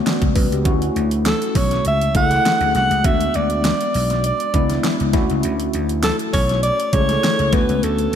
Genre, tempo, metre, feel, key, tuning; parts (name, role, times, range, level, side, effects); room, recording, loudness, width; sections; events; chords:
polished 1980s jazz-funk pop; 100 BPM; 4/4; swing 54% on 16ths; D major; A4 = 440 Hz
tine electric piano; accompaniment; 0.0-8.2 s; G#3 to D5; -22 LUFS; left 3 dB; overdrive, medium stereo tremolo, wide subtle chorus
pop drum kit; drums; 0.1-8.2 s; hi-hat, kick drum, snare drum; -21 LUFS; right 1 dB; overdrive
vintage slap bass; bass; 0.2-8.2 s; B1 to D2; -21 LUFS; equal
breathy alto saxophone; melody; 1.3-8.2 s; A4 to F#5; -20 LUFS; right 1 dB
moderate lush hall reverb, RT60 2.5 s; bright 1980s-style digital production; -16 LUFS; side -9 dB against mid
0.0-8.2 A section
0.0 Gmaj9#11; 0.7 Dmaj7; 3.0 E7; 5.1 Dmaj7; 7.5 Bm9